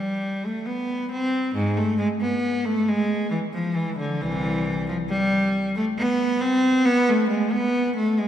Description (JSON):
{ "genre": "classical, baroque-style suite movement for unaccompanied cello", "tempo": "68 BPM", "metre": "3/4", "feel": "rubato", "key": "unclear", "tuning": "A4 = 438 Hz", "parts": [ { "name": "rich cello", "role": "solo", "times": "0.0-8.3 s", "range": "C2 to C4", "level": "-21 LUFS", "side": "equal", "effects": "none" } ], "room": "wet church reverb, RT60 2.8 s", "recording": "recorded in a church or concert hall", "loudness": "-21 LUFS", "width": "side -10 dB against mid", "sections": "0.0-8.3 A section", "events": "none", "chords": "none" }